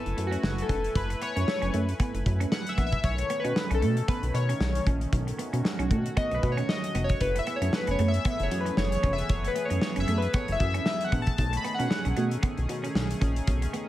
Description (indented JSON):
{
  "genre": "early-eighties boogie funk",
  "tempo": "115 BPM",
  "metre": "4/4",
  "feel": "swing 56% on 16ths",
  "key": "F# dorian",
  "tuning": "A4 = 440 Hz",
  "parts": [
    { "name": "chorused polysynth", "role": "accompaniment", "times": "0.0-12.2 s", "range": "F#4 to B5", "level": "-30 LUFS", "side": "left 2 dB", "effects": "none" },
    { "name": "chorused pulse-width pad", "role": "sustained chords", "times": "0.0-13.9 s", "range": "D#3 to G#5", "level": "-36 LUFS", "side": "equal", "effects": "none" },
    { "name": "clean electric guitar", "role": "riff", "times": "0.0-13.8 s", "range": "A3 to C#4", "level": "-34 LUFS", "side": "right 4 dB", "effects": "wide subtle chorus" },
    { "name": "chorused synth bass", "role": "bass", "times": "0.1-13.7 s", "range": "E#1 to B2", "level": "-28 LUFS", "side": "equal", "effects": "none" },
    { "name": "modern studio drum kit", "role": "drums", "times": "0.1-13.9 s", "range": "hi-hat, kick drum, snare drum", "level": "-30 LUFS", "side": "equal", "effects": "gated reverb" }
  ],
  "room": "small room ambience",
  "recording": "none",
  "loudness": "-25 LUFS",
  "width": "side -14 dB against mid",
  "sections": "0.0-13.9 A section",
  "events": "analog polysynth solo 0.0-13.9",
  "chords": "0.0 F#m11; 3.0 B13; 7.2 F#m11; 11.4 B13"
}